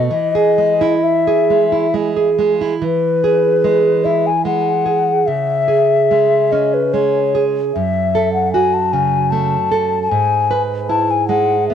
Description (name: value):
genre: romantic duo for flute and classical guitar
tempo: 64-77 BPM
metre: 3/4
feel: rubato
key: E major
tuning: A4 = 441 Hz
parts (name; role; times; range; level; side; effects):
- mellow hollow silver concert flute; melody; 0.0-11.7 s; B4 to A5; -16 LUFS; left 7 dB; cassette tape, plate reverb, tape echo
- nylon-string guitar; accompaniment; 0.0-11.7 s; F#2 to B4; -16 LUFS; right 5 dB; cassette tape
room: wet booth ambience, RT60 0.2 s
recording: home recording on cassette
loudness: -13 LUFS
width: side -8 dB against mid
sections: 0.0-2.8 A section; 2.8-11.7 A section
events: none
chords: 0.1 E; 5.3 C#m; 7.7 F#m; 10.1 E/G#